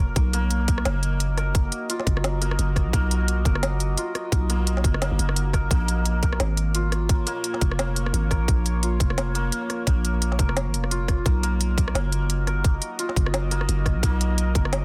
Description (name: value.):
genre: half-time drum and bass.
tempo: 173 BPM.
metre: 4/4.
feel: swing 57% on 16ths, half-time.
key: unclear.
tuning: A4 = 441 Hz.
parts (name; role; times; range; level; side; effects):
deep dark ambient pad; sustained chords; 0.0-14.8 s; Bb3 to D#5; -38 LUFS; equal; chorus, built-in reverb, sidechain pumping.
santur; arpeggios; 0.0-14.8 s; Bb3 to Bb4; -33 LUFS; equal; digital delay.
growling 808-style bass; bass; 0.0-14.8 s; F1 to B1; -26 LUFS; equal; tube saturation.
electronic kick drum; drums; 0.2-14.6 s; none; -24 LUFS; equal; none.
organic electronic drum kit; drums; 0.2-14.8 s; hi-hat, rim click, snare drum; -31 LUFS; equal; none.
room: little or no reverb.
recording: dense, heavily limited modern master.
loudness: -23 LUFS.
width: mono.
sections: 0.0-14.8 A section.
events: none.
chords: 0.2 B; 5.7 Bbm; 11.3 B.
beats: | 0.16 0.51 0.85 1.20 | 1.55 1.89 2.24 2.59 | 2.93 3.28 3.63 3.98 | 4.32 4.67 5.01 5.36 | 5.71 6.06 6.40 6.75 | 7.10 7.44 7.79 8.14 | 8.48 8.83 9.18 9.52 | 9.87 10.22 10.56 10.91 | 11.26 11.61 11.95 12.30 | 12.64 12.99 13.34 13.69 | 14.03 14.38 14.73.